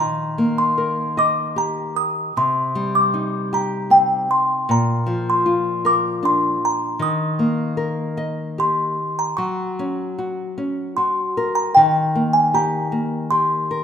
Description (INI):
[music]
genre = children's music, lullaby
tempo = 77 BPM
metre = 3/4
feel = rubato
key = Eb major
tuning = A4 = 440 Hz
[part]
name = music box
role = melody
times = 0.0-13.8 s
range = G5 to Eb6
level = -18 LUFS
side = equal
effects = none
[part]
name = nylon-string guitar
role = accompaniment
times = 0.0-13.8 s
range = Bb2 to Eb5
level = -23 LUFS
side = left 1 dB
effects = none
[sound]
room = moderate concert hall reverb, RT60 2.1 s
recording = minimal, uncompressed stereo recording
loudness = -17 LUFS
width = side -8 dB against mid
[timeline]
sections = 0.0-9.4 A section; 9.4-13.8 B section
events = none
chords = 0.0 Eb; 2.4 Cm; 4.7 Bb; 7.0 Eb; 9.4 Gb; 11.8 Eb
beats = 0.78 1.57 | 2.36 3.14 3.92 | 4.70 5.47 6.23 | 7.00 7.78 8.58 | 9.38 10.18 10.97 | 11.75 12.53 13.30